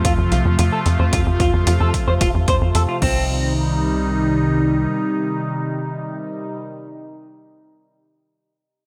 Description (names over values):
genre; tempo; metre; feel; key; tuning
synthwave; 111 BPM; 4/4; straight; C dorian; A4 = 440 Hz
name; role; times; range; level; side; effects
phased analog pad; sustained chords; 0.0-6.6 s; C3 to F4; -24 LUFS; equal; phaser, chorus, sidechain pumping
semi-hollow electric guitar; riff; 0.0-3.5 s; C4 to C5; -26 LUFS; equal; lush chorus, low-pass filter, digital delay
tight sequencer bass; bass; 0.0-4.9 s; F1 to F2; -21 LUFS; equal; sidechain pumping
80s electronic pad drums; drums; 0.0-3.1 s; crash cymbal, hi-hat; -31 LUFS; equal; none
electronic kick drum; drums; 0.0-3.1 s; none; -24 LUFS; equal; none
room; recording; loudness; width
moderate lush hall reverb, RT60 2.4 s; bright 1980s-style digital production; -19 LUFS; mono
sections
0.0-3.3 A section; 3.3-7.6 B section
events
none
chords
0.0 F; 3.0 Cm